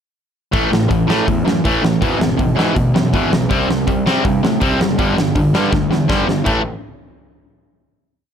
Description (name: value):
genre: punk rock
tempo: 162 BPM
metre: 4/4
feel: straight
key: unclear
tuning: A4 = 443 Hz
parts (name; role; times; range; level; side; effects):
- distorted electric guitar; riff; 0.5-6.6 s; E2 to C4; -16 LUFS; equal; distortion
- fuzz picked electric bass; bass; 0.5-6.6 s; F#1 to C3; -21 LUFS; equal; overdrive
- big rock drum kit; drums; 0.5-6.6 s; crash cymbal, hi-hat, kick drum, snare drum; -19 LUFS; equal; none
room: little or no reverb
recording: none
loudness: -14 LUFS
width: side -8 dB against mid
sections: 0.5-6.5 verse; 6.5-7.9 final chord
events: drum fill 5.7-6.5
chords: 0.5 A5; 2.0 E/G#; 3.5 C5; 5.0 G5; 6.5 A5